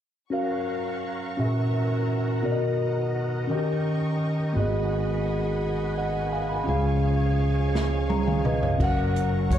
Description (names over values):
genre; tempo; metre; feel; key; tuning
slow gospel; 57 BPM (dotted quarters); 6/8; straight; F# major; A4 = 437 Hz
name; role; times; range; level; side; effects
mellow tine electric piano; accompaniment; 0.3-9.6 s; G#2 to B5; -25 LUFS; equal; phaser
overdriven tonewheel organ; sustained chords; 0.3-9.6 s; A#2 to A#4; -34 LUFS; right 4 dB; slow rotary speaker, chorus vibrato
warm symphonic string section; sustained chords; 0.3-9.6 s; F#4 to C#6; -38 LUFS; left 2 dB; none
fingered electric bass; bass; 4.6-9.6 s; F#1 to C#2; -26 LUFS; equal; none
swinging big-band drum kit; drums; 7.8-9.6 s; crash cymbal, hi-hat, kick drum, snare drum, toms; -27 LUFS; right 1 dB; none
concert harp; melody; 8.8-9.6 s; C#5 to F#5; -30 LUFS; left 1 dB; none
room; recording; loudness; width
light reverb; live gig heard through the venue's PA, club reverb; -23 LUFS; side -10 dB against mid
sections
0.3-8.8 A section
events
drum fill 7.7-8.8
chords
0.3 F#maj7; 1.4 F#7/A#; 2.4 Bmaj7; 3.5 D#7; 4.6 G#m7; 6.7 C#; 8.8 F#